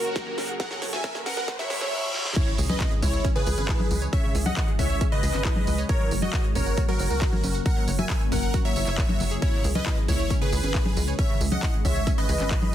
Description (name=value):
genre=uplifting trance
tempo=136 BPM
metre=4/4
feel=straight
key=C# dorian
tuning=A4 = 440 Hz
part: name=supersaw chords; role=melody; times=0.0-12.7 s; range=E4 to G#5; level=-30 LUFS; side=equal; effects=sidechain pumping, digital delay
part: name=plucky unison lead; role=second line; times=0.0-12.7 s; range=A#4 to G#5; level=-36 LUFS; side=equal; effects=phaser, sidechain pumping, digital delay
part: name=shimmering ambient pad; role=sustained chords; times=0.0-12.7 s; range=C#3 to A#5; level=-35 LUFS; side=left 2 dB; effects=chorus, built-in reverb, phaser, sidechain pumping
part: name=analog pluck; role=arpeggios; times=0.0-12.7 s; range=C#3 to F#5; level=-36 LUFS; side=right 2 dB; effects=chorus, sidechain pumping, digital delay
part: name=big-room dance drum kit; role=drums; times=0.0-12.7 s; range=congas, crash cymbal, handclaps, hi-hat, snare drum, tambourine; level=-31 LUFS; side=equal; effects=high-pass filter on snare, high-pass filter on hats, high-pass filter on perc, high-pass filter on cymbals
part: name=riser, reverse cymbal and impact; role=sound effects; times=0.0-4.1 s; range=none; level=-34 LUFS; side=equal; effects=none
part: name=electronic kick drum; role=drums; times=0.2-12.6 s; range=none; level=-24 LUFS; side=equal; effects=none
part: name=tight sequencer bass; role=bass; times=2.6-12.6 s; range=F#1 to C#2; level=-27 LUFS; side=equal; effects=sidechain pumping
room=light reverb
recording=dense, heavily limited modern master, high-pass filter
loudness=-22 LUFS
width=side -11 dB against mid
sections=0.0-2.4 A section; 2.4-12.7 B section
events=build-up 0.0-2.4; drum fill 0.0-1.9, 2.1; riser 0.0-1.9; filter sweep on digital synth lead 0.0-2.4; filter sweep 0.0-2.4; reverse cymbal 1.5-2.4; drop 2.4-12.7; impact 2.4-4.1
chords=0.0 F#; 2.4 C#m; 5.9 F#; 9.4 C#m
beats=0.16 | 0.60 1.04 1.48 1.92 | 2.36 2.81 3.25 3.69 | 4.13 4.57 5.01 5.45 | 5.89 6.33 6.78 7.22 | 7.66 8.10 8.54 8.98 | 9.42 9.86 10.30 10.75 | 11.19 11.63 12.07 12.51